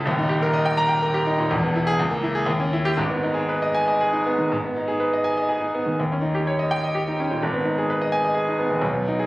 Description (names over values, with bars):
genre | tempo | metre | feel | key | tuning
classical, virtuoso piano study | 125 BPM | 3/4 | rubato | G# minor | A4 = 440 Hz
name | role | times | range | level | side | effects
clear grand piano | solo | 0.0-9.3 s | D#1 to A#5 | -20 LUFS | equal | none
room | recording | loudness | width
wet recital hall reverb, RT60 1.4 s | recorded on a phone in the room, club reverb | -20 LUFS | side -19 dB against mid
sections
0.0-4.5 A section; 4.5-9.3 A section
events
none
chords
0.1 D#; 1.5 E; 2.0 A#m7b5/C#; 2.5 D#7b9; 3.0 G#m; 6.0 D#7; 7.4 G#m